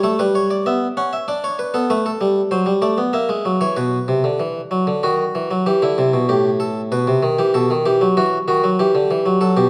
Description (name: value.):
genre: classical, baroque-style two-part invention for harpsichord.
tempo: 96 BPM.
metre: 3/4.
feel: straight.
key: E minor.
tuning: A4 = 441 Hz.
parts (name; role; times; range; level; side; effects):
harpsichord; solo; 0.0-9.7 s; A2 to F#5; -18 LUFS; equal; none.
room: wet recital hall reverb, RT60 1.7 s.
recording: none.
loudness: -18 LUFS.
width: mono.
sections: 0.0-5.7 A section; 5.7-9.7 B section.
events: none.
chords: 0.0 A7; 1.3 D5; 1.9 F#dim; 3.1 F#7; 3.8 Bsus4; 5.0 D#m; 5.7 Em; 6.9 B; 7.5 B7; 8.8 Em.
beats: | 0.04 0.66 1.28 | 1.90 2.51 3.13 | 3.77 4.40 5.03 | 5.67 6.30 6.92 | 7.54 8.17 8.79 | 9.41.